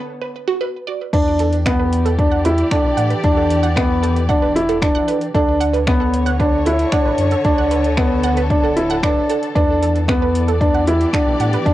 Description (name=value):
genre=piano and strings electronica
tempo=114 BPM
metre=4/4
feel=straight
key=unclear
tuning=A4 = 442 Hz
part: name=warm symphonic string section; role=sustained chords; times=0.0-11.7 s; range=D3 to D5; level=-25 LUFS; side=left 2 dB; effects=sidechain pumping, cassette tape
part: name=wide unison pluck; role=arpeggios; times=0.2-11.6 s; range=F#4 to F#5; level=-25 LUFS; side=right 7 dB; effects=phaser, sidechain pumping, cassette tape, tape echo
part: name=warm upright piano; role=riff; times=1.1-11.7 s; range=B3 to E4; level=-17 LUFS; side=equal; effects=cassette tape, tape echo
part: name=round analog bass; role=bass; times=1.1-11.7 s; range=D1 to A2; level=-21 LUFS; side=equal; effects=sidechain pumping
part: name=deep house drum kit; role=drums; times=1.1-11.7 s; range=crash cymbal, finger snaps, hi-hat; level=-28 LUFS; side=equal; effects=overdrive, cassette tape
part: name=electronic kick drum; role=drums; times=1.1-11.7 s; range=none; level=-19 LUFS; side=equal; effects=overdrive, cassette tape
room=light reverb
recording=home recording on cassette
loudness=-14 LUFS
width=side -14 dB against mid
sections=0.0-1.1 A section; 1.1-11.7 B section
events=build-up 0.0-1.1; drop 1.1-11.7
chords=0.0 Bm; 1.1 Em7; 5.3 Bm7; 9.6 Em7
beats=0.09 0.61 | 1.14 1.66 2.19 2.72 | 3.24 3.77 4.30 4.82 | 5.35 5.88 6.40 6.93 | 7.45 7.98 8.51 9.03 | 9.56 10.09 10.61 11.14 | 11.66